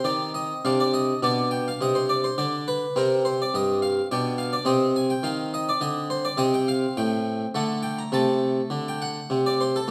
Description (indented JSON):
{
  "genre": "classical, baroque-style suite movement for harpsichord",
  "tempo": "103 BPM",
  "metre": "3/4",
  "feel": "rubato",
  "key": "C minor",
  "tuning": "A4 = 440 Hz",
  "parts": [
    { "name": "harpsichord", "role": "solo", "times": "0.0-9.9 s", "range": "G2 to Bb5", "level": "-24 LUFS", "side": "equal", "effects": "none" }
  ],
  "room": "wet recital hall reverb, RT60 1.5 s",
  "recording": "none",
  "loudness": "-25 LUFS",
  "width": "mono",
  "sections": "0.0-9.9 A section",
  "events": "none",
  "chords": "0.0 Cm; 0.6 Cmadd9; 1.2 Bdim; 3.0 C5; 4.1 G/B; 4.7 Cm; 6.4 Am7b5; 7.6 D; 8.1 D5/C",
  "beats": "0.04 0.64 | 1.23 1.81 2.39 | 2.97 3.53 4.10 | 4.67 5.25 5.82 | 6.40 6.97 7.55 | 8.14 8.72 9.30 | 9.90"
}